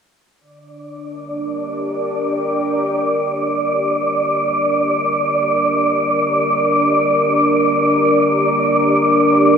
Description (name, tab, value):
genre	ambient, sequencer-driven space music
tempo	free time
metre	none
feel	none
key	G minor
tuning	A4 = 441 Hz
part	sweeping resonant pad	sustained chords	0.8-9.6 s	D4 to Bb4	-18 LUFS	equal	chorus
part	wind-like tuned noise texture	texture	1.3-9.6 s	D5	-16 LUFS	right 1 dB	built-in reverb
room	wet plate reverb, RT60 3.1 s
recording	none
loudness	-14 LUFS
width	side -7 dB against mid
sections	0.4-9.6 A section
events	fade-in on analog synth pad 0.4-9.6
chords	0.4 Gm